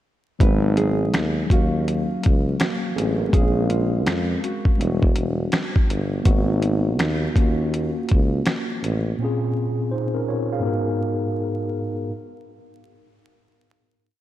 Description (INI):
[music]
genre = lo-fi hip hop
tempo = 82 BPM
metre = 4/4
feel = swing 63% on 16ths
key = G# dorian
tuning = A4 = 440 Hz
[part]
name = nylon-string guitar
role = melody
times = 0.4-5.0 s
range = E#4 to B4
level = -29 LUFS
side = right 2 dB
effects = low-pass filter, analog delay
[part]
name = mellow tine electric piano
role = accompaniment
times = 0.4-12.1 s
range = G#2 to E#5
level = -25 LUFS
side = equal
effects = medium stereo tremolo, low-pass filter
[part]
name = mellow tuba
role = bass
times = 0.4-9.1 s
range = E1 to E#2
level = -22 LUFS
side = equal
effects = none
[part]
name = dusty soul sampler-style drum kit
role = drums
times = 0.4-9.0 s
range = finger snaps, hi-hat, kick drum, snare drum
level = -20 LUFS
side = equal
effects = none
[sound]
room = light reverb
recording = vinyl crackle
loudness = -19 LUFS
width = side -13 dB against mid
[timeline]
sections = 0.4-12.1 A section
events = none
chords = 0.4 G#m7; 1.5 D#m9; 3.3 A#m9; 4.8 Em9; 6.3 G#m9; 7.4 D#m9; 9.2 A#m9; 10.6 G#m9